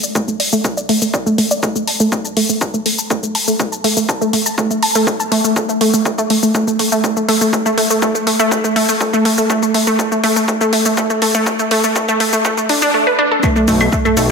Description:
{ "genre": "melodic techno", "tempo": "122 BPM", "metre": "4/4", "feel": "straight", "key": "unclear", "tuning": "A4 = 440 Hz", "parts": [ { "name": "wide unison pluck", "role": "arpeggios", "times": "0.0-14.3 s", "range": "A3 to A5", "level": "-14 LUFS", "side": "equal", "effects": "cassette tape, sidechain pumping, digital delay" }, { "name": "house drum kit", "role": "drums", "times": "0.0-14.3 s", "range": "claves, hi-hat, shaker, toms", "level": "-20 LUFS", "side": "left 3 dB", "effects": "high-pass filter on perc, studio reverb, high-pass filter on hats, high-pass filter on toms" }, { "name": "electronic kick drum", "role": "drums", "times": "0.2-14.0 s", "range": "none", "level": "-21 LUFS", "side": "equal", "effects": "high-pass filter on kick, studio reverb" }, { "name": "dark detuned saw bass", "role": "bass", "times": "13.7-14.3 s", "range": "B1", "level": "-16 LUFS", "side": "equal", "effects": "sidechain pumping" } ], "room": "wet lush hall reverb, RT60 1.6 s, digital ambience", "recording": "high-pass filter", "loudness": "-13 LUFS", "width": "side -5 dB against mid", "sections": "0.0-13.4 A section", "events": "build-up 0.0-13.4; filter sweep on synth pluck 0.0-13.4", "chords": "0.0 Asus4; 1.6 N.C.; 13.4 Asus2" }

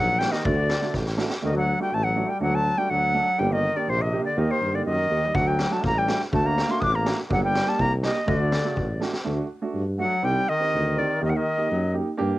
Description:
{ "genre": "klezmer", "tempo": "123 BPM", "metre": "2/4", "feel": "straight", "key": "D phrygian dominant", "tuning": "A4 = 440 Hz", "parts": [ { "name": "breathy bright concert flute", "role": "melody", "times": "0.0-12.0 s", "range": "C5 to Eb6", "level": "-24 LUFS", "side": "equal", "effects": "none" }, { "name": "warm duduk", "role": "second line", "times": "0.0-11.9 s", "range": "C3 to D4", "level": "-30 LUFS", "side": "left 3 dB", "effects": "cassette tape" }, { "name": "warm upright piano", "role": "accompaniment", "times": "0.0-12.4 s", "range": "A3 to A4", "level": "-29 LUFS", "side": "right 3 dB", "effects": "cassette tape" }, { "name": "breathy tuba", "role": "bass", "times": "0.0-12.3 s", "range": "G1 to G2", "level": "-26 LUFS", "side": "equal", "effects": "none" }, { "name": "street-band drum kit", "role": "drums", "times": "0.2-1.4, 5.3-9.2 s", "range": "kick drum, snare drum", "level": "-29 LUFS", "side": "equal", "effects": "cassette tape" } ], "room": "little or no reverb", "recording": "home recording on cassette", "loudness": "-21 LUFS", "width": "side -16 dB against mid", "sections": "0.0-1.4 A section; 1.4-9.3 B section; 9.3-12.4 C section", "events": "drum fill 0.9-1.4, 9.0; flute solo 9.3-12.4", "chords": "0.5 D; 3.4 Gm; 4.4 Eb; 5.3 D; 7.3 Gm; 8.3 D; 10.2 Cm; 11.2 Eb" }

